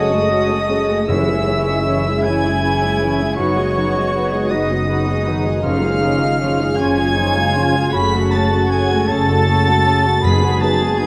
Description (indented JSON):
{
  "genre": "cinematic, emotional film score for orchestra",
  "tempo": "52 BPM (dotted quarters)",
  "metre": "6/8",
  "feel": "rubato",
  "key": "F# dorian",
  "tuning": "A4 = 440 Hz",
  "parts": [
    { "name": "rich chamber violin section", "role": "melody", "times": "0.0-11.1 s", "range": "C#6 to B6", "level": "-28 LUFS", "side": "equal", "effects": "none" },
    { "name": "silver concert flute", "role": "second line", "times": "0.0-11.1 s", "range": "C#5 to B5", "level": "-27 LUFS", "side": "equal", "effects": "none" },
    { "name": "warm oboe", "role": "second line", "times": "0.0-11.1 s", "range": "C#5 to B5", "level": "-26 LUFS", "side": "equal", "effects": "none" },
    { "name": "warm symphonic violin section", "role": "second line", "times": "0.0-11.1 s", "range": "E4 to E#5", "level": "-28 LUFS", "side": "equal", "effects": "none" },
    { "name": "dark symphonic viola section", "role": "accompaniment", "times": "0.0-11.1 s", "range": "E3 to F#4", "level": "-25 LUFS", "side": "equal", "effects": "none" },
    { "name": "dark French horn section", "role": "sustained chords", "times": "0.0-11.1 s", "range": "F#3 to G#4", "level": "-26 LUFS", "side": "equal", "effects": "none" },
    { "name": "concert harp", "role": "arpeggios", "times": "0.0-11.1 s", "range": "F#2 to C#5", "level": "-30 LUFS", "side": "equal", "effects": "none" },
    { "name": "dark symphonic double bass section", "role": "bass", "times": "0.0-11.1 s", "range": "F#1", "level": "-24 LUFS", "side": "equal", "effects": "none" },
    { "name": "warm symphonic cello section", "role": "bass", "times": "0.0-11.1 s", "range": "C#4 to A4", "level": "-26 LUFS", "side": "equal", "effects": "none" },
    { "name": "timpani", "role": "percussion", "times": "1.1-11.1 s", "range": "F#2", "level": "-26 LUFS", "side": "equal", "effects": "none" }
  ],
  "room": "wet scoring stage reverb, RT60 1.9 s",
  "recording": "dark, warm production",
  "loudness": "-17 LUFS",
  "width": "mono",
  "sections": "0.0-11.1 A section",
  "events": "none",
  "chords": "0.0 F#madd9; 1.1 C#m/F#; 3.4 G#m7/F#; 5.6 C#/F#; 7.9 F#madd9; 10.2 B6/F#",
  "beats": "| 1.08 2.24 | 3.38 4.51 | 5.64 6.79 | 7.94 9.09 | 10.23"
}